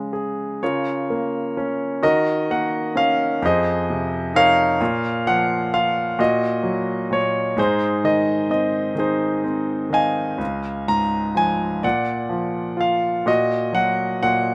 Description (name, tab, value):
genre	classical, lyrical solo piano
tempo	43 BPM (dotted quarters)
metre	6/8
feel	rubato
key	unclear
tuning	A4 = 440 Hz
part	bright grand piano	solo	0.0-14.5 s	Db2 to Bb5	-21 LUFS	equal	none
room	little or no reverb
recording	close, detailed microphones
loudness	-21 LUFS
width	mono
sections	0.0-14.5 A section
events	none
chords	0.0 Db5; 0.6 Bbm/Db; 2.0 Ebm7; 3.4 Fm7; 4.8 Bbm; 6.2 Ebm/Bb; 7.6 Ab; 10.4 Dbadd9; 11.8 Bb; 13.3 Ebm/Bb